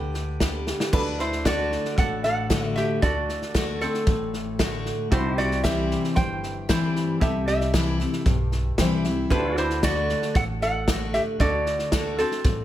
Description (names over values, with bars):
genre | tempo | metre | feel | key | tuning
honky-tonk and classic country | 115 BPM | 4/4 | straight | unclear | A4 = 440 Hz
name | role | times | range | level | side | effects
lap resonator guitar | melody | 0.0-12.6 s | C4 to G5 | -26 LUFS | right 1 dB | none
picked steel-string acoustic guitar | accompaniment | 0.0-12.6 s | G2 to G4 | -28 LUFS | left 2 dB | none
pedal steel guitar | sustained chords | 0.0-12.6 s | D4 to D5 | -36 LUFS | right 1 dB | none
upright bass | bass | 0.0-12.6 s | G1 to D2 | -30 LUFS | equal | none
natural country drum kit | drums | 0.1-12.6 s | crash cymbal, hi-hat, kick drum, snare drum | -26 LUFS | equal | none
clear upright piano | accompaniment | 0.9-12.6 s | D4 to C5 | -36 LUFS | right 4 dB | none
room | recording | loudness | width
moderate large studio reverb, RT60 1.4 s | none | -21 LUFS | side -12 dB against mid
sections
0.9-12.6 A section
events
drum fill 0.7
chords
0.0 G; 0.9 D; 5.1 C; 9.3 D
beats
0.40 | 0.93 1.45 1.98 2.50 | 3.02 3.55 4.07 4.60 | 5.12 5.64 6.17 6.69 | 7.21 7.74 8.26 8.79 | 9.31 9.83 10.36 10.88 | 11.40 11.93 12.45